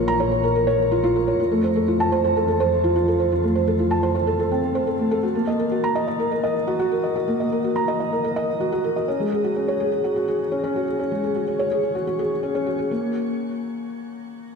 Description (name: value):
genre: piano and strings electronica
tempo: 125 BPM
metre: 4/4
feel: straight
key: unclear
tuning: A4 = 440 Hz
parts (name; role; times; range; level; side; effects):
- felt-muted upright piano; riff; 0.0-14.6 s; Ab3 to Bb5; -20 LUFS; equal; digital delay, shimmer reverb
- muted chamber double bass section; bass; 0.0-5.2 s; Bb1 to F2; -27 LUFS; right 1 dB; none
room: wet concert hall reverb, RT60 2.0 s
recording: none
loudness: -19 LUFS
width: side -5 dB against mid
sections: 0.0-12.9 A section; 12.9-14.6 B section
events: none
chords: 0.0 Bbm; 1.4 F; 5.2 Ebm; 9.1 Gbsus2; 12.9 N.C.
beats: 0.43 0.91 | 1.39 1.87 2.35 2.83 | 3.31 3.79 4.27 4.75 | 5.23 5.71 6.19 6.67 | 7.15 7.63 8.11 8.59 | 9.07 9.55 10.03 10.51 | 10.99 11.47 11.95 12.43 | 12.91 13.39 13.87 14.35